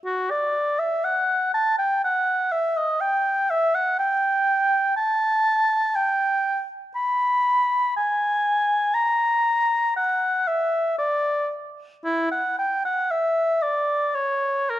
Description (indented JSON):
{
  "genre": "classical, baroque-style fantasia for unaccompanied oboe",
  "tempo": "60 BPM",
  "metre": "3/4",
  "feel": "rubato",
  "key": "unclear",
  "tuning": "A4 = 440 Hz",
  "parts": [
    { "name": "warm oboe", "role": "solo", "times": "0.0-14.8 s", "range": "E4 to B5", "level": "-20 LUFS", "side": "equal", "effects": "none" }
  ],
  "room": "moderate recital hall reverb, RT60 1.6 s",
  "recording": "close, detailed microphones",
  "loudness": "-20 LUFS",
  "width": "side -13 dB against mid",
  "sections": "0.0-14.8 A section",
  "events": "none",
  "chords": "none"
}